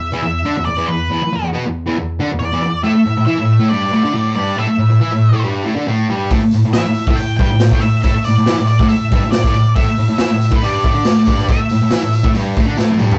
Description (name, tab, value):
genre	garage rock duo or trio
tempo	139 BPM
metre	4/4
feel	straight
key	unclear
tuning	A4 = 440 Hz
part	octave-fuzz lead guitar	melody	0.0-12.3 s	B4 to G5	-23 LUFS	equal	distortion
part	fuzz guitar	riff	0.0-13.2 s	E2 to E4	-17 LUFS	equal	distortion
part	raw garage drum kit	drums	6.3-13.2 s	hi-hat, kick drum, snare drum, toms	-18 LUFS	equal	none
part	tambourine	percussion	6.3-13.1 s	none	-40 LUFS	equal	none
room	wet small room reverb, RT60 0.5 s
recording	rough rehearsal-room recording, warm saturation, nothing above 8.0 kHz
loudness	-15 LUFS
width	mono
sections	0.0-13.2 A section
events	drum fill 12.8-13.2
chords	0.0 E5; 2.8 A5